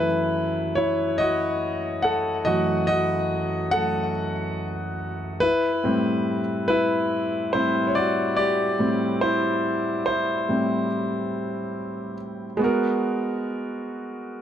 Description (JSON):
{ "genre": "R&B", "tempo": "71 BPM", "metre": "4/4", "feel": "straight", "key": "unclear", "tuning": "A4 = 440 Hz", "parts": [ { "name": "warm concert grand piano", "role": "solo", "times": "0.0-14.4 s", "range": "F#2 to F#5", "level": "-22 LUFS", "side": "equal", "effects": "ping-pong delay" } ], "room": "light reverb, small room ambience", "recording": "dark, warm production", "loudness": "-22 LUFS", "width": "side -9 dB against mid", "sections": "0.0-12.6 A section; 12.6-14.4 B section", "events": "grand piano solo 0.0-12.6", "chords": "0.0 F#m7; 5.4 Am9; 12.6 G#m9" }